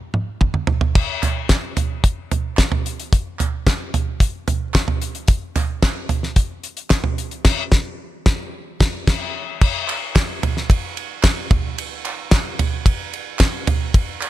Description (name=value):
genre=pop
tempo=111 BPM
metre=4/4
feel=straight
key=none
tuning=none
part: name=damped 70s drum kit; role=drums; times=0.1-14.3 s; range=crash cymbal, hi-hat, kick drum, ride cymbal, snare drum, toms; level=-17 LUFS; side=equal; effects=none
part: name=group handclap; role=percussion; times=1.2-14.3 s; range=none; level=-30 LUFS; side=right 5 dB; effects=none
room=little or no reverb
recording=none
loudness=-18 LUFS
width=side -14 dB against mid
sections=1.0-9.6 A section; 9.6-14.3 B section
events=drum fill 0.0-1.0; band accent 7.5-9.6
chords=none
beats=0.41 | 0.95 1.50 2.04 2.58 | 3.12 3.66 4.20 4.74 | 5.29 5.83 6.37 6.91 | 7.45 7.99 8.53 9.07 | 9.62 10.16 10.70 11.24 | 11.78 12.32 12.86 13.40 | 13.95